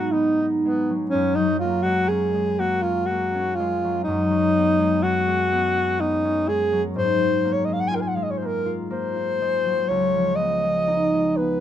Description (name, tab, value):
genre	classical, impressionist duo for alto saxophone and harp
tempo	61 BPM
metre	3/4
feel	rubato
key	F# major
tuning	A4 = 440 Hz
part	mellow alto saxophone	melody	0.0-11.6 s	B3 to G#5	-22 LUFS	equal	none
part	concert harp	accompaniment	0.0-11.6 s	C#2 to E#4	-24 LUFS	left 1 dB	none
room	light reverb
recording	minimal, uncompressed stereo recording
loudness	-20 LUFS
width	side -10 dB against mid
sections	0.0-11.6 A section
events	none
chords	0.0 G#m7; 1.1 F#add9; 4.1 B69/F#; 7.0 G#13; 9.9 C#9